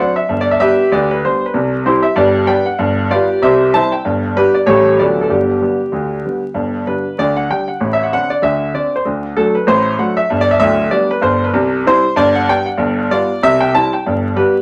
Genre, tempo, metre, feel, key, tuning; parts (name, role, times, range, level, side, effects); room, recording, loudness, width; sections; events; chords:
jazz, stride piano; 192 BPM; 4/4; swing 58% on 8ths; G major; A4 = 436 Hz
clear grand piano; solo; 0.0-14.6 s; D1 to A5; -14 LUFS; equal
wet small room reverb, RT60 0.5 s; vinyl crackle; -15 LUFS; mono
0.0-6.5 A section; 6.5-14.6 A section
0.3 G; 1.5 C; 2.2 G; 2.8 G7; 3.4 C; 4.0 G; 4.7 A7; 5.0 D69; 5.3 G; 7.8 D5/A; 9.0 D7; 10.3 G; 11.5 C; 12.2 G; 12.8 G7; 13.4 C; 14.1 G